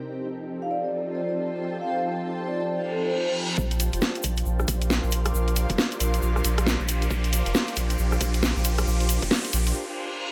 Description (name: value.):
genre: UK garage, two-step garage.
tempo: 136 BPM.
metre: 4/4.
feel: swing 61% on 16ths.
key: Bb major.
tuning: A4 = 440 Hz.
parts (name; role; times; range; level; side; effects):
soft string machine; sustained chords; 0.0-10.3 s; F3 to C5; -36 LUFS; equal; ensemble chorus, sidechain pumping.
granular cloud pad; texture; 0.0-9.8 s; C4 to D6; -36 LUFS; equal; built-in reverb, sidechain pumping.
vibraphone with medium mallets; melody; 0.6-3.2 s; A4 to F5; -32 LUFS; equal; tape echo.
reverse cymbal and riser; sound effects; 2.9-10.3 s; none; -36 LUFS; equal; none.
saturated sub bass; bass; 3.6-9.7 s; F1 to Bb1; -27 LUFS; equal; sidechain pumping.
electronic kick drum; drums; 3.6-9.3 s; none; -33 LUFS; equal; high-pass filter on kick, small room ambience.
egg shaker; percussion; 3.6-9.7 s; none; -38 LUFS; equal; none.
garage drum kit; drums; 3.7-9.7 s; hi-hat, rim click, snare drum; -28 LUFS; equal; small room ambience.
room: light reverb, digital ambience.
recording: none.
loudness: -25 LUFS.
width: mono.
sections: 0.0-3.6 A section; 3.6-10.3 B section.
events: filter sweep 0.0-3.6; reverse cymbal 2.9-3.6, 9.8-10.3; build-up 3.6-10.3; riser 3.6-9.8; break 9.8-10.3.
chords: 0.0 F9; 3.6 Bb69.